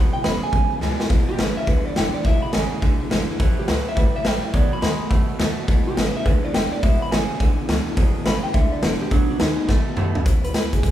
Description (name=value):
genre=rockabilly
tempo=210 BPM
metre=4/4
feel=swing 65% on 8ths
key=E major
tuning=A4 = 439 Hz
part: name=electric guitar through a small old amp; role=melody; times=0.0-10.9 s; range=D4 to B5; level=-27 LUFS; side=right 1 dB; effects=none
part: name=picked steel-string acoustic guitar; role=accompaniment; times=0.0-10.9 s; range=E2 to F#4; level=-30 LUFS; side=left 4 dB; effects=none
part: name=twangy electric guitar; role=riff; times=0.0-10.2 s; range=E2 to A3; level=-30 LUFS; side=right 3 dB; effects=none
part: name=upright bass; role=bass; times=0.0-10.9 s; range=E1 to A2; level=-29 LUFS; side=equal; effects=none
part: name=raw garage drum kit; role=drums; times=0.2-10.9 s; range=hi-hat, kick drum, snare drum, toms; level=-19 LUFS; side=equal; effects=none
room=light reverb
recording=band playing live in one room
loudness=-18 LUFS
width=side -12 dB against mid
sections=0.0-1.1 A section; 1.1-10.3 B section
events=drum fill 0.8, 9.7-10.3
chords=0.0 E; 3.4 A; 4.5 B7; 5.7 E; 9.1 B7; 10.3 E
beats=0.24 0.53 0.82 | 1.10 1.39 1.68 1.96 | 2.25 2.54 2.82 3.11 | 3.40 3.68 3.97 4.25 | 4.54 4.83 5.11 5.40 | 5.69 5.97 6.26 6.54 | 6.83 7.12 7.40 7.69 | 7.97 8.26 8.55 8.83 | 9.12 9.41 9.69 9.98 | 10.27 10.55 10.84